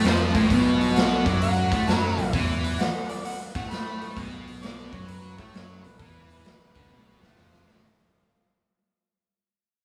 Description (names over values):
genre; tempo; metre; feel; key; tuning
blues rock power trio and southern rock; 131 BPM; 4/4; swing 66% on 8ths; B minor; A4 = 438 Hz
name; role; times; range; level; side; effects
overdriven tonewheel organ; sustained chords; 0.0-7.8 s; F#3 to B4; -43 LUFS; equal; none
thick fuzz guitar; riff; 0.0-7.8 s; A2 to A3; -28 LUFS; equal; distortion
growling fingered electric bass; bass; 0.0-7.8 s; A1 to A2; -31 LUFS; equal; overdrive
raw garage drum kit; drums; 0.1-7.8 s; hi-hat, kick drum, snare drum, toms; -29 LUFS; equal; none
overdriven harmonica; melody; 0.9-7.3 s; E4 to B5; -34 LUFS; equal; none
room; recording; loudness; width
moderate stone room reverb, RT60 1.4 s; band playing live in one room, small room ambience; -24 LUFS; mono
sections
0.0-7.8 A section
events
fade-out 0.0-7.8; drum fill 6.9-7.8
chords
0.0 Bm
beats
0.05 | 0.51 0.96 1.42 1.88 | 2.34 2.79 3.25 3.71 | 4.17 4.63 5.09 5.54 | 6.00 6.46 6.92 7.38